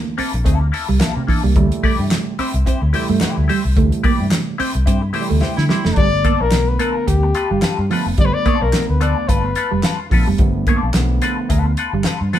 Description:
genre	funk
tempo	109 BPM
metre	4/4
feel	swing 56% on 16ths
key	G mixolydian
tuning	A4 = 440 Hz
part	overdriven tine electric piano	stabs	0.0-12.4 s	C3 to D4	-25 LUFS	right 4 dB	none
part	semi-hollow electric guitar	accompaniment	0.2-12.4 s	Bb3 to D5	-24 LUFS	left 6 dB	wah
part	clean electric guitar	riff	0.2-12.4 s	E3 to C4	-23 LUFS	right 7 dB	none
part	vintage muted fingered electric bass	bass	0.2-12.3 s	F1 to D3	-19 LUFS	equal	none
part	damped 70s drum kit	drums	0.2-12.4 s	handclaps, hi-hat, kick drum, snare drum	-19 LUFS	equal	none
part	breathy baritone saxophone	second line	5.6-6.1 s	E4	-25 LUFS	right 4 dB	none
part	mellow trumpet	melody	6.0-10.1 s	G4 to D5	-20 LUFS	left 5 dB	none
room	moderate studio reverb, RT60 0.8 s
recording	band playing live in one room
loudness	-14 LUFS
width	side -11 dB against mid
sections	0.0-6.0 A section; 6.0-12.4 B section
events	band accent 3.8-6.0; drum fill 5.4-6.0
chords	0.0 C13; 1.6 D9sus4; 6.0 G9

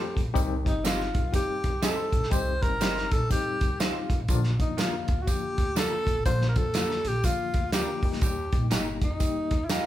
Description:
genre	uptempo 1960s-style soul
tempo	122 BPM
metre	4/4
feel	swing 62% on 8ths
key	unclear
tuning	A4 = 443 Hz
part	breathy tenor saxophone	melody	0.0-9.9 s	Eb4 to C5	-30 LUFS	equal	none
part	barky reed electric piano	accompaniment	0.0-9.9 s	D3 to A4	-34 LUFS	left 6 dB	overdrive, tremolo
part	upright bass	bass	0.2-9.8 s	G1 to F2	-32 LUFS	equal	none
part	warm soul drum kit	drums	0.2-9.8 s	hi-hat, kick drum, snare drum	-27 LUFS	equal	none
part	tambourine	percussion	0.4-9.8 s	none	-40 LUFS	right 6 dB	none
part	electric guitar through a small old amp	stabs	0.8-9.8 s	Bb3 to C5	-36 LUFS	right 4 dB	none
room	moderate large studio reverb, RT60 1.2 s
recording	band playing live in one room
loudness	-24 LUFS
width	side -13 dB against mid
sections	0.0-9.9 A section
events	none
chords	0.4 Cm; 4.3 Bb; 8.0 Eb

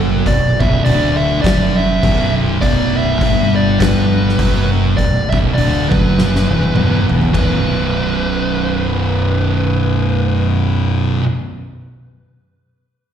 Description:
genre	stoner and doom metal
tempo	102 BPM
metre	4/4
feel	swing 58% on 8ths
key	B minor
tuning	A4 = 440 Hz
part	soft string machine	sustained chords	0.0-2.6 s	B3 to C#5	-32 LUFS	right 1 dB	none
part	thick fuzz guitar	riff	0.0-11.2 s	B1 to G3	-20 LUFS	left 8 dB	distortion
part	thick fuzz guitar	riff	0.0-11.2 s	B1 to G3	-18 LUFS	right 6 dB	distortion
part	fuzz fingered electric bass	bass	0.0-11.2 s	B0 to G1	-20 LUFS	equal	overdrive
part	fuzz lead guitar	melody	0.3-10.5 s	B4 to E5	-21 LUFS	equal	distortion, slapback echo, ping-pong delay
part	oversized low-tuned drum kit	drums	0.3-7.5 s	crash cymbal, hi-hat, kick drum, snare drum, toms	-18 LUFS	equal	none
room	small room ambience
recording	live gig heard through the venue's PA, recital hall reverb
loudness	-12 LUFS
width	side -9 dB against mid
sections	0.0-7.3 A section; 7.3-9.7 B section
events	drum fill 6.2-7.3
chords	0.0 Bm; 7.3 B5

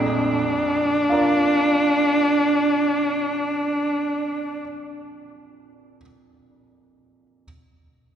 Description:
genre	classical, romantic duo for viola and grand piano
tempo	free time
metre	none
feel	none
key	Bb major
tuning	A4 = 440 Hz
part	rich viola	melody	0.0-4.6 s	D4	-20 LUFS	equal	none
part	bright grand piano	accompaniment	0.0-7.5 s	Bb1 to D5	-27 LUFS	right 2 dB	none
room	wet church reverb, RT60 3.4 s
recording	recorded in a church or concert hall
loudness	-18 LUFS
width	side -9 dB against mid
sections	0.0-5.2 A section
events	none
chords	0.0 Bb

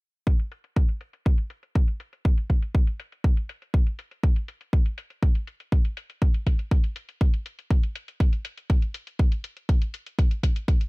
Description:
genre	nu-disco, nu disco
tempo	121 BPM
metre	4/4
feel	straight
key	none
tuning	none
part	electronic hi-hat	drums	0.3-10.9 s	none	-42 LUFS	left 3 dB	low-pass filter on hats
part	electronic kick drum	drums	0.3-10.8 s	none	-21 LUFS	equal	none
room	little or no reverb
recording	none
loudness	-23 LUFS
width	side -27 dB against mid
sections	0.3-10.9 A section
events	none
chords	none

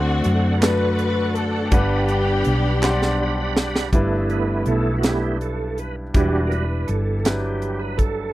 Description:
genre	slow gospel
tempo	54 BPM (dotted quarters)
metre	6/8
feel	straight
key	G major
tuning	A4 = 440 Hz
part	warm studio string section	melody	0.0-3.6 s	A3 to B4	-25 LUFS	left 3 dB	none
part	clear baby grand piano	accompaniment	0.0-8.3 s	G2 to F#5	-25 LUFS	equal	none
part	bright tonewheel organ	sustained chords	0.0-8.3 s	G3 to B5	-26 LUFS	right 3 dB	slow rotary speaker, chorus vibrato
part	hollow-body short-scale fingered electric bass	bass	0.0-8.3 s	E1 to F#2	-23 LUFS	equal	none
part	crisp fusion drum kit	drums	0.2-8.2 s	hi-hat, kick drum, snare drum	-20 LUFS	equal	none
part	group handclap	percussion	0.6-3.2 s	none	-27 LUFS	right 2 dB	none
room	little or no reverb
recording	dry, close 1970s-style studio recording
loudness	-18 LUFS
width	side -16 dB against mid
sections	0.0-3.9 A section; 3.9-8.3 B section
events	drum fill 2.8-3.9; tonewheel organ solo 3.9-8.3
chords	0.0 D7; 1.7 Gmaj7; 3.9 G6; 6.1 Em7

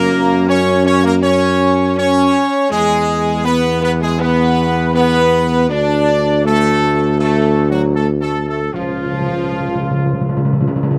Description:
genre	classical, ceremonial fanfare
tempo	76-81 BPM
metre	4/4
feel	straight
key	unclear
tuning	A4 = 440 Hz
part	warm trumpet section	melody	0.0-11.0 s	E#4 to D5	-20 LUFS	equal	none
part	clear French horn section	sustained chords	0.0-11.0 s	E#3 to D4	-22 LUFS	equal	none
part	mellow trombone section	sustained chords	0.0-11.0 s	E#3 to D4	-24 LUFS	equal	none
part	mellow tuba	bass	0.0-11.0 s	C#2 to F#2	-18 LUFS	equal	none
part	timpani	percussion	0.0-0.8, 8.7-11.0 s	F#2 to C#3	-21 LUFS	equal	none
room	light reverb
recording	close, detailed microphones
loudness	-15 LUFS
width	mono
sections	0.0-11.0 A section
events	timpani fill 8.7-11.0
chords	0.0 F#; 2.7 E; 5.7 D5; 8.7 C#

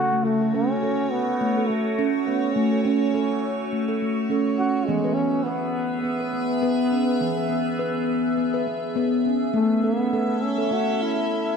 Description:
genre	world meditative, meditative tuned percussion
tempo	103 BPM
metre	4/4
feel	swing 55% on 16ths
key	unclear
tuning	A4 = 442 Hz
part	mellow trombone	melody	0.0-11.6 s	G#3 to F#4	-26 LUFS	equal	none
part	evolving wavetable pad	sustained chords	0.0-11.6 s	C#3 to E5	-28 LUFS	left 1 dB	phaser, built-in reverb
part	steel tongue drum	arpeggios	0.0-11.5 s	E3 to B4	-23 LUFS	right 1 dB	diffuse ambient delay
room	wet echo chamber reverb, RT60 1.8 s, small room ambience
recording	none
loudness	-21 LUFS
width	side -6 dB against mid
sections	0.3-9.5 A section; 9.5-11.6 B section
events	none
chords	0.3 F#m/A; 4.9 E; 9.5 A

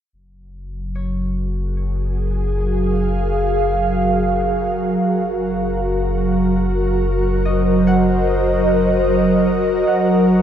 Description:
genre	ambient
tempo	74 BPM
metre	3/4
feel	straight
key	Gb lydian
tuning	A4 = 439 Hz
part	ethereal airy pad	sustained chords	0.9-10.4 s	Gb3 to F5	-17 LUFS	right 1 dB	ensemble chorus, built-in reverb
part	warm sub bass	bass	0.1-10.4 s	Gb1	-22 LUFS	left 1 dB	none
part	concert harp	arpeggios	1.0-2.9, 7.5-10.4 s	Db5 to Gb5	-28 LUFS	equal	dub echo
room	wet echo chamber reverb, RT60 2.2 s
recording	echo-heavy mix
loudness	-16 LUFS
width	side -9 dB against mid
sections	0.2-10.4 A section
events	fade-in on harp 0.2-10.4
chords	0.2 Gbmaj7; 5.0 Ab7/Gb

